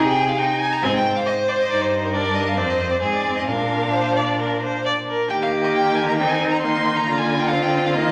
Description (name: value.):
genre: quick classical-period movement for string quartet.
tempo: 136 BPM.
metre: 4/4.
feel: straight.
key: Eb major.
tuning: A4 = 441 Hz.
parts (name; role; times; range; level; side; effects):
clear violin; second line; 0.0-8.1 s; Eb4 to D5; -25 LUFS; equal; none.
warm viola; accompaniment; 0.0-8.1 s; Bb3 to Eb4; -27 LUFS; equal; none.
warm cello; bass; 0.0-8.1 s; F2 to Eb3; -28 LUFS; equal; none.
rich violin; melody; 0.1-8.1 s; Bb4 to C6; -26 LUFS; equal; none.
room: wet recital hall reverb, RT60 1.4 s.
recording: none.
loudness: -20 LUFS.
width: mono.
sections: 0.0-5.3 A section; 5.3-8.1 B section.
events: none.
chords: 0.0 Ab/C; 0.8 Ab; 1.7 Eb/G; 2.6 Fm; 3.5 Bb; 5.3 Eb; 7.1 Bb/D.